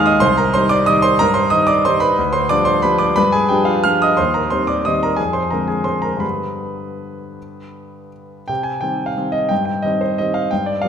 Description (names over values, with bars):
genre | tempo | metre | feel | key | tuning
classical, piano waltz | 152-195 BPM | 3/4 | rubato | C minor | A4 = 441 Hz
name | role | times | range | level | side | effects
warm concert grand piano | solo | 0.0-10.9 s | C2 to F6 | -15 LUFS | equal | none
room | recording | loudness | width
wet recital hall reverb, RT60 1.6 s | minimal, uncompressed stereo recording | -14 LUFS | side -8 dB against mid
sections
0.0-8.5 A section; 8.5-10.9 B section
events
none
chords
0.2 Cm; 2.2 G7/D; 4.2 Cm/Eb; 5.2 Dm7b5/F; 6.2 G; 8.5 Cm